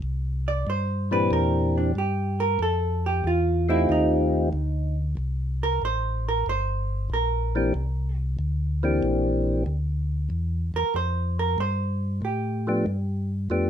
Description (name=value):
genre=soul jazz organ trio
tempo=93 BPM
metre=4/4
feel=swing 69% on 8ths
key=C mixolydian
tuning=A4 = 440 Hz
part: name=mellow tonewheel organ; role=bass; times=0.0-13.7 s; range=G1 to A2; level=-26 LUFS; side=equal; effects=slow rotary speaker
part: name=vintage hollow-body jazz guitar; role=accompaniment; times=0.5-13.3 s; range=D4 to D5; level=-27 LUFS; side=right 3 dB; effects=none
part: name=percussive tonewheel organ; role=melody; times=1.1-13.7 s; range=Bb2 to G4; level=-23 LUFS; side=left 1 dB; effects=slow rotary speaker
room=light reverb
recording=minimal, uncompressed stereo recording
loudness=-23 LUFS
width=side -9 dB against mid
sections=0.0-13.7 A section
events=hollow-body jazz guitar solo 0.0-13.7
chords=0.0 C9; 2.6 F9; 5.2 C9; 12.9 G9